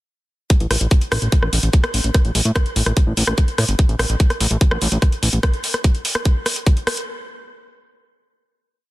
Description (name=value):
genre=psychedelic trance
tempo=146 BPM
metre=4/4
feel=straight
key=unclear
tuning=A4 = 444 Hz
part: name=drum and bass drum kit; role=drums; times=0.5-7.1 s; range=hi-hat, rim click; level=-22 LUFS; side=equal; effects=soft clipping on snare
part: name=electronic kick drum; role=drums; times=0.5-6.7 s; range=none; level=-15 LUFS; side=equal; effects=none
part: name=fat analog bass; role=bass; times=0.6-5.4 s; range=G1 to A2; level=-19 LUFS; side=equal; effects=none
room=little or no reverb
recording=dense, heavily limited modern master, lossy compression artefacts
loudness=-16 LUFS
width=side -18 dB against mid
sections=0.5-7.1 groove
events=none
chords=none